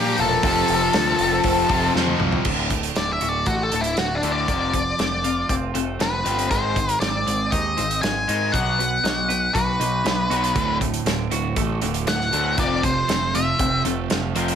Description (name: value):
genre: quiet-loud alternative rock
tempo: 119 BPM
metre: 4/4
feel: straight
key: unclear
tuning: A4 = 441 Hz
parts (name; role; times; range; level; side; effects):
- octave-fuzz lead guitar; melody; 0.0-13.8 s; D4 to A5; -22 LUFS; left 2 dB; distortion, slapback echo, plate reverb
- warm studio string section; sustained chords; 0.0-2.4 s; F3 to F5; -33 LUFS; equal; none
- distorted electric guitar; riff; 0.0-2.5 s; F2 to Bb3; -26 LUFS; right 1 dB; overdrive
- overdriven electric guitar; riff; 0.0-14.6 s; D2 to B3; -27 LUFS; left 12 dB; none
- thick fuzz guitar; riff; 0.0-2.5, 10.6-14.6 s; D2 to Bb3; -28 LUFS; right 13 dB; distortion
- growling picked electric bass; bass; 0.0-14.6 s; D1 to Bb2; -27 LUFS; equal; overdrive
- loose indie drum kit; drums; 0.2-14.6 s; crash cymbal, hi-hat, kick drum, snare drum, toms; -26 LUFS; right 1 dB; none
- twelve-string electric guitar; arpeggios; 2.5-14.6 s; D2 to B4; -29 LUFS; right 8 dB; wide subtle chorus, slapback echo
room: light reverb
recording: none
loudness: -19 LUFS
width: side -8 dB against mid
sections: 0.0-2.5 A section; 2.5-14.6 B section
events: drum fill 2.0-2.5; lead electric guitar solo 2.5-14.6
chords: 0.4 F; 2.5 D; 4.5 F; 6.5 G#; 8.5 B; 10.6 D; 12.6 F